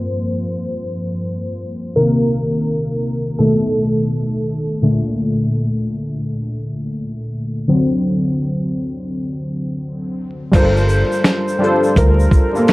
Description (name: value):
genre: lo-fi hip hop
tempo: 84 BPM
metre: 4/4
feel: swing 64% on 16ths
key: G minor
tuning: A4 = 437 Hz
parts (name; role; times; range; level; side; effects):
- warm analog keys; accompaniment; 0.0-12.7 s; G2 to C5; -17 LUFS; equal; chorus, cassette tape, low-pass filter
- vintage muted fingered electric bass; bass; 10.5-12.3 s; G1 to D2; -15 LUFS; equal; none
- dusty soul sampler-style drum kit; drums; 10.5-12.7 s; crash cymbal, hi-hat, kick drum, shaker, snare drum; -14 LUFS; equal; none
- tube shaker; percussion; 10.5-12.7 s; none; -40 LUFS; right 5 dB; none
- felt-muted upright piano; melody; 10.6-12.7 s; A4 to C5; -19 LUFS; equal; low-pass filter, plate reverb
room: moderate small room reverb, RT60 0.6 s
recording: vinyl crackle, low-pass filter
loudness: -16 LUFS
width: side -20 dB against mid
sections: 0.0-10.5 A section; 10.5-12.7 B section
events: synth keys solo 0.0-10.5; filter sweep 0.0-10.5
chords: 0.0 Gm7; 2.0 Cm7; 3.4 B7; 4.8 Bbmaj7; 7.7 D7; 10.5 Gm7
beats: 0.54 1.25 | 1.97 2.68 3.39 4.11 | 4.82 5.54 6.25 6.96 | 7.68 8.39 9.11 9.82 | 10.54 11.25 11.96 12.68